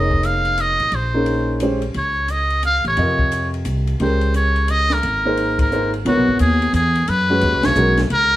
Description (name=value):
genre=modal jazz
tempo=176 BPM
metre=3/4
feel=swing 64% on 8ths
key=Bb dorian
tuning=A4 = 442 Hz
part: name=trumpet with metal mute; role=melody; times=0.0-8.4 s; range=F#4 to F5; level=-19 LUFS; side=equal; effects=none
part: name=warm grand piano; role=accompaniment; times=0.0-8.0 s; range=C3 to Eb5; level=-21 LUFS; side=equal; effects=none
part: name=upright bass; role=bass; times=0.0-8.4 s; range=F1 to F#2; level=-20 LUFS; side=equal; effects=none
part: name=compact cocktail drum kit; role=drums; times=0.1-8.2 s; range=hi-hat, kick drum, ride cymbal, snare drum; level=-28 LUFS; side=left 1 dB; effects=none
room=moderate stone room reverb, RT60 1.0 s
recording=band playing live in one room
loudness=-15 LUFS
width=side -14 dB against mid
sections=0.0-6.1 A section; 6.1-8.4 B section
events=band accent 5.5, 7.6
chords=0.0 Bbm11; 5.0 Abadd9; 6.1 C#9sus4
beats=0.24 0.58 | 0.92 1.27 1.61 | 1.95 2.29 2.63 | 2.98 3.32 3.66 | 4.00 4.34 4.69 | 5.03 5.37 5.71 | 6.05 6.40 6.74 | 7.08 7.42 7.76 | 8.11